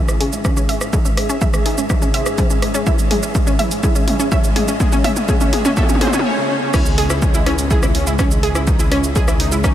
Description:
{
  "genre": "melodic techno",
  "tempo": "124 BPM",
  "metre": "4/4",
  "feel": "straight",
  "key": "C# minor",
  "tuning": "A4 = 441 Hz",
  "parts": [
    { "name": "fat analog lead", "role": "melody", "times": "0.0-9.7 s", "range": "G#3 to C#5", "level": "-24 LUFS", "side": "equal", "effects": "analog chorus, sidechain pumping, analog delay" },
    { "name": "analog pluck", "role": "arpeggios", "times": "0.0-9.7 s", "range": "C#4 to E5", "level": "-22 LUFS", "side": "equal", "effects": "chorus, sidechain pumping, analog delay" },
    { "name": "swelling detuned saw bass", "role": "bass", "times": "0.0-9.7 s", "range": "C#2", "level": "-25 LUFS", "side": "equal", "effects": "none" },
    { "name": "ethereal airy pad", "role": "texture", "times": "0.1-9.7 s", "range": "C#4 to E5", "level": "-29 LUFS", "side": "right 1 dB", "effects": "none" },
    { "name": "punchy analog drum machine", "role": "drums", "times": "0.1-9.7 s", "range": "crash cymbal, hi-hat, rim click, shaker, toms", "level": "-22 LUFS", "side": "equal", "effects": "overdrive, sidechain pumping on toms, sidechain pumping on perc, sidechain pumping on hats, sidechain pumping on cymbals" },
    { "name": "electronic kick drum", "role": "drums", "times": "0.4-9.7 s", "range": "none", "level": "-17 LUFS", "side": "equal", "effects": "overdrive" },
    { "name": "swell", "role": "sound effects", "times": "6.0-6.7 s", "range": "none", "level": "-31 LUFS", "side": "equal", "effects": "none" }
  ],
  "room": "moderate huge ambient reverb, RT60 8.3 s",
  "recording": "dreamy mix soaked in reverb",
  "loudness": "-14 LUFS",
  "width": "side -11 dB against mid",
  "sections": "0.0-6.7 A section; 6.7-9.7 B section",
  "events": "build-up 0.0-6.7; drum fill 0.0-6.3; filter sweep on synth arpeggio sound 0.0-6.7; filter sweep on analog synth lead 0.0-6.7; swell 6.0-6.7; break 6.3-6.7; drop 6.7-9.7",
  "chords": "0.0 C#madd9"
}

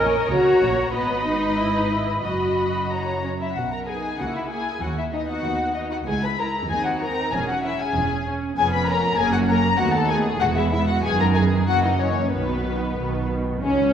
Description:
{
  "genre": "quick classical-period movement for string orchestra",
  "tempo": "89-99 BPM",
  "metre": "2/4",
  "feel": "rubato",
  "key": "B major",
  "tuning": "A4 = 440 Hz",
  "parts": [
    { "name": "muted studio violin section", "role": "melody", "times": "0.0-13.9 s", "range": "C#4 to B5", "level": "-26 LUFS", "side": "left 5 dB", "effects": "none" },
    { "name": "muted studio violin section", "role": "second line", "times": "0.0-13.9 s", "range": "B3 to B5", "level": "-26 LUFS", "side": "left 1 dB", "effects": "none" },
    { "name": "muted studio viola section", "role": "accompaniment", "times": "0.0-13.9 s", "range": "D#3 to A#4", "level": "-25 LUFS", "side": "equal", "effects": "none" },
    { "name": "muted studio cello section", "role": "bass", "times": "0.0-13.9 s", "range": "C#2 to C#3", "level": "-28 LUFS", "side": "right 3 dB", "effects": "none" },
    { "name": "muted studio double bass section", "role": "bass", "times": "0.0-13.9 s", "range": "E1 to D#2", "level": "-28 LUFS", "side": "right 3 dB", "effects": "none" }
  ],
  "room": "wet scoring stage reverb, RT60 1.7 s",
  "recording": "heard from further back in the room",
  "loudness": "-20 LUFS",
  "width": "side -8 dB against mid",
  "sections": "0.0-3.6 A section; 3.6-13.6 B section",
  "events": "none",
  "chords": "0.0 F#; 0.9 G#m; 2.2 B/F#; 3.6 B; 4.2 A#dim/C#; 4.8 B/D#; 6.1 C#m; 6.7 D#m6; 7.3 C#m/E; 8.6 C#7/E#; 9.2 F#; 9.8 B7/D#; 10.4 E; 11.0 B/F#; 11.7 F#7; 12.3 B"
}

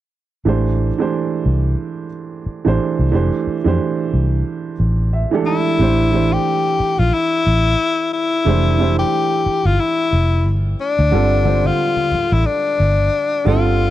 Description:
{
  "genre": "R&B, neo-soul",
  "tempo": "90 BPM",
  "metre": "4/4",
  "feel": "swing 58% on 16ths",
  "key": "unclear",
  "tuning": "A4 = 439 Hz",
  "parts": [
    { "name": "warm upright piano", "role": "accompaniment", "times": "0.5-13.9 s", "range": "D3 to A5", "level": "-21 LUFS", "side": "right 6 dB", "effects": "none" },
    { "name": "vintage muted fingered electric bass", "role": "bass", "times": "0.5-13.9 s", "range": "F1 to F2", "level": "-16 LUFS", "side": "equal", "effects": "none" },
    { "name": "clear tenor saxophone", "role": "melody", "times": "5.5-13.9 s", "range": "D4 to G4", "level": "-17 LUFS", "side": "left 4 dB", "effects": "none" },
    { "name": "congas", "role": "percussion", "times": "11.1-13.6 s", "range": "none", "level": "-27 LUFS", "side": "left 5 dB", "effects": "none" }
  ],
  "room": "little or no reverb",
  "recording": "dry, close 1970s-style studio recording",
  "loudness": "-15 LUFS",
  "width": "side -13 dB against mid",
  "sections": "0.5-5.8 A section; 5.8-13.9 B section",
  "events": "upright piano fill 4.8-5.8",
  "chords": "0.5 Am7; 3.1 Fmaj9 (rootless); 5.8 Am7; 8.5 Fmaj9; 11.1 Csus4/G"
}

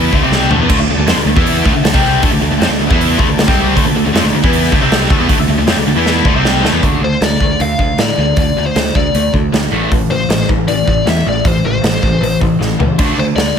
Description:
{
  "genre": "hard rock",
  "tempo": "156 BPM",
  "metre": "4/4",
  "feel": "straight",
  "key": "unclear",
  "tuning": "A4 = 438 Hz",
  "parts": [
    { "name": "overdriven tonewheel organ", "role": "sustained chords", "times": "0.0-6.8 s", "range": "D5 to A5", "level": "-27 LUFS", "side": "equal", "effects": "none" },
    { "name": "high-gain distorted guitar", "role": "riff", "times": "0.0-6.8 s", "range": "C3 to E4", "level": "-18 LUFS", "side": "equal", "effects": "distortion" },
    { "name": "overdriven electric guitar", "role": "riff", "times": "0.0-13.5 s", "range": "A2 to E4", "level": "-18 LUFS", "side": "left 13 dB", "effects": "phaser" },
    { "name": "sludgy distorted guitar", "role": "riff", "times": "0.0-13.6 s", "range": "A2 to E4", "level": "-18 LUFS", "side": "right 11 dB", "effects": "overdrive" },
    { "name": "modern bright picked electric bass", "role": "bass", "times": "0.0-13.5 s", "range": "A1 to A2", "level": "-18 LUFS", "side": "equal", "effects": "none" },
    { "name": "big rock drum kit", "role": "drums", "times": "0.1-13.5 s", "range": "crash cymbal, hi-hat, kick drum, snare drum, toms", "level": "-15 LUFS", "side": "equal", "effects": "none" },
    { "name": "biting lead guitar", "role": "melody", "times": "7.0-13.6 s", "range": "C5 to F5", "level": "-18 LUFS", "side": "left 4 dB", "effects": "overdrive, digital delay" }
  ],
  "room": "light reverb",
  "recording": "none",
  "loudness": "-10 LUFS",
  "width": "side -7 dB against mid",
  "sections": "0.0-6.8 A section; 6.8-13.6 B section",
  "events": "drum fill 0.3-0.7, 6.1-6.8, 12.6-13.0",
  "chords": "0.0 Dm; 6.8 D5; 9.7 Am; 13.0 D5"
}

